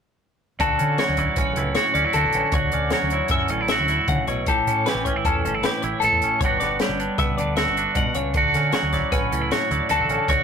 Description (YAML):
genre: math rock and midwest emo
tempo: 155 BPM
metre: 5/4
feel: straight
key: D major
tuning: A4 = 440 Hz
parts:
  - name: twangy electric guitar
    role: accompaniment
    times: 0.6-10.4 s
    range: G2 to A4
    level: -22 LUFS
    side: right 4 dB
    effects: none
  - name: twelve-string electric guitar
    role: arpeggios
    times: 0.6-10.4 s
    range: A4 to F#5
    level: -26 LUFS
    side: left 7 dB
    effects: none
  - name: deep dub fingered electric bass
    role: bass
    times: 0.6-10.4 s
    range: G1 to D3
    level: -28 LUFS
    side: equal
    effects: none
  - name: compact cocktail drum kit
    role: drums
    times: 0.6-10.4 s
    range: hi-hat, kick drum, snare drum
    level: -26 LUFS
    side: left 1 dB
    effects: none
room: moderate booth ambience, RT60 0.2 s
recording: rough rehearsal-room recording, tube saturation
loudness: -19 LUFS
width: side -7 dB against mid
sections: 0.6-10.4 A section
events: none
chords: 0.6 Dmaj9; 4.5 A7; 6.4 Gmaj7; 8.3 Dmaj9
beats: | 0.59 0.98 1.36 1.75 2.14 | 2.53 2.92 3.31 3.69 4.08 | 4.47 4.86 5.25 5.63 6.02 | 6.41 6.80 7.18 7.57 7.96 | 8.35 8.73 9.12 9.51 9.90 | 10.28